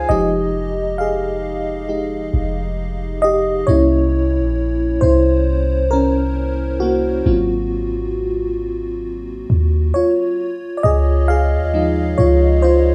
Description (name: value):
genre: contemporary R&B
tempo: 67 BPM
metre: 4/4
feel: swing 58% on 16ths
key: unclear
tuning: A4 = 441 Hz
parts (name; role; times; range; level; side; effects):
- FM electric piano with soft pad layer; accompaniment; 0.0-12.9 s; F3 to Ab5; -20 LUFS; equal; chorus, tremolo
- clean 808-style bass; bass; 0.0-12.9 s; F1 to Eb2; -21 LUFS; equal; none
room: light reverb, digital ambience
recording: small room ambience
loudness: -18 LUFS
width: mono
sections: 0.0-3.7 A section; 3.7-12.9 B section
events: FM electric piano solo 0.0-3.7, 3.7-12.9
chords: 0.1 Fm9; 3.7 C7b9; 7.3 Ab13; 10.4 Dbmaj7